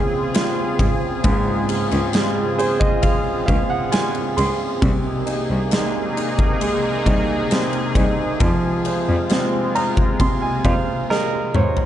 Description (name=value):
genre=pop ballad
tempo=67 BPM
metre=4/4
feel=straight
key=Db major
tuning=A4 = 435 Hz
part: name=warm baby grand piano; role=accompaniment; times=0.0-11.9 s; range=Ab2 to C6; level=-22 LUFS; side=right 3 dB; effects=none
part: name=sweeping resonant pad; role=sustained chords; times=0.0-11.9 s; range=C3 to Ab4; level=-24 LUFS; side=left 2 dB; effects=chorus
part: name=huge arena drum kit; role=drums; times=0.3-11.9 s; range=kick drum, ride cymbal, snare drum, toms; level=-22 LUFS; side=left 1 dB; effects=none
part: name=clear cello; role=bass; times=0.8-11.6 s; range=C2 to Ab2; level=-23 LUFS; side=equal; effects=none
room=light reverb, small room ambience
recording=dark, warm production, nothing above 10.5 kHz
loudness=-17 LUFS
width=side -11 dB against mid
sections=0.0-11.9 A section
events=grand piano fill 2.1-4.8, 9.3-11.9; drum fill 11.1-11.9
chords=0.0 Dbmaj7; 4.8 Abadd9/C; 8.4 Fm